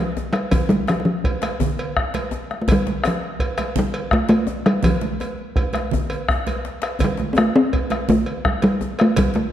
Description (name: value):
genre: west african traditional, West African drum ensemble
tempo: 111 BPM (dotted quarters)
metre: 12/8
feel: straight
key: F major pentatonic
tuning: A4 = 441 Hz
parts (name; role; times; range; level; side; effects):
- talking drum; melody; 0.0-9.5 s; F3 to C4; -19 LUFS; equal; none
- djembe; percussion; 0.2-9.5 s; none; -28 LUFS; left 4 dB; none
- bombo; percussion; 0.3-9.4 s; none; -24 LUFS; equal; none
- cowbell; percussion; 0.3-9.3 s; none; -29 LUFS; right 3 dB; none
- congas; percussion; 0.4-9.5 s; none; -28 LUFS; right 7 dB; none
room: moderate scoring stage reverb, RT60 1.6 s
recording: dark, warm production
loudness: -18 LUFS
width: side -11 dB against mid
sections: 0.0-9.5 A section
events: drum fill 6.1-7.0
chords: none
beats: | 0.52 1.06 1.60 2.15 | 2.69 3.23 3.77 4.31 | 4.85 5.39 5.93 6.47 | 7.01 7.55 8.09 8.63 | 9.17